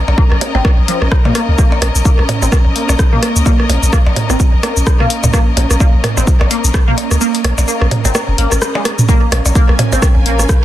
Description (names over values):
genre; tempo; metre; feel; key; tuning
minimal techno; 128 BPM; 4/4; swing 58% on 16ths; Bb minor; A4 = 439 Hz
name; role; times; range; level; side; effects
punchy sub bass; bass; 0.0-10.5 s; F1 to Bb2; -14 LUFS; equal; tube saturation, sidechain pumping
warm studio string section; texture; 0.0-10.6 s; Db4 to Bb5; -22 LUFS; left 2 dB; sidechain pumping
minimal click drum kit; percussion; 0.1-10.5 s; percussion blips, rim click, toms; -18 LUFS; right 2 dB; overdrive, soft clipping on snare, digital delay
resonant blip pluck; riff; 0.2-10.3 s; F3 to C4; -20 LUFS; equal; phaser, lush chorus, sidechain pumping, digital delay
electronic kick drum; drums; 0.2-10.6 s; none; -11 LUFS; equal; none
punchy analog drum machine; drums; 0.4-10.6 s; hi-hat, rim click, shaker; -20 LUFS; left 2 dB; soft clipping on snare
room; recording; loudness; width
little or no reverb; dense, heavily limited modern master; -10 LUFS; side -13 dB against mid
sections
0.0-9.1 A section; 9.1-10.6 B section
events
filter sweep on synth pluck 0.0-9.1; kick drops out 7.2-9.1; drop 9.1-10.6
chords
0.0 Bbm; 9.1 Bbm7